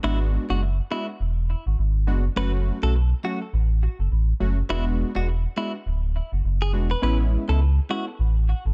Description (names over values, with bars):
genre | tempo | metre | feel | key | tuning
afrobeats | 103 BPM | 4/4 | swing 58% on 16ths | unclear | A4 = 438 Hz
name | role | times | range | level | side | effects
direct-recorded clean electric guitar | melody | 0.0-8.0 s | E4 to B4 | -34 LUFS | equal | analog delay
warm analog keys | accompaniment | 0.0-8.1 s | F#3 to F#4 | -31 LUFS | equal | chorus
sub bass with octave | bass | 0.0-8.7 s | D1 to C#2 | -24 LUFS | equal | none
room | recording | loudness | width
digital ambience | echo-heavy mix | -24 LUFS | mono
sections
0.0-8.7 A section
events
none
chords
0.0 E7; 2.4 F#m; 4.7 E7; 7.0 Amaj7